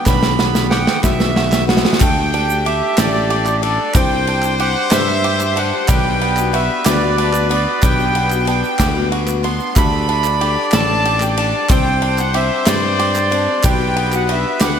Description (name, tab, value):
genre	indie folk with a building arrangement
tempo	62 BPM (dotted quarters)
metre	6/8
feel	straight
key	G major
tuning	A4 = 440 Hz
part	accordion	melody	0.0-14.8 s	D5 to C6	-20 LUFS	right 3 dB	light tremolo tuning, slapback echo, analog delay
part	picked acoustic archtop guitar	accompaniment	0.0-14.8 s	B2 to C5	-24 LUFS	left 8 dB	slapback echo
part	bluegrass banjo	arpeggios	0.0-14.8 s	G3 to C5	-24 LUFS	right 6 dB	slapback echo
part	picked electric bass	bass	0.1-14.8 s	A1 to G2	-20 LUFS	equal	none
part	natural country drum kit	drums	0.1-14.8 s	kick drum, ride cymbal, snare drum	-19 LUFS	equal	none
part	egg shaker	percussion	0.1-14.8 s	none	-31 LUFS	right 9 dB	none
part	group handclap	percussion	0.1-14.8 s	none	-31 LUFS	right 4 dB	none
part	mellow trumpet	second line	2.0-14.8 s	G4 to D5	-22 LUFS	left 3 dB	slapback echo
room	moderate lush hall reverb, RT60 2.5 s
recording	big arena sound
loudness	-13 LUFS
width	side -8 dB against mid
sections	0.0-2.0 A section; 2.0-14.8 B section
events	build-up 0.0-2.0; drum fill 0.0-2.0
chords	0.0 Gmaj7/B; 2.0 Dsus4; 4.0 Csus2; 5.9 Gmaj7/B; 9.8 Dsus4; 11.7 Csus2; 13.6 Gmaj7/B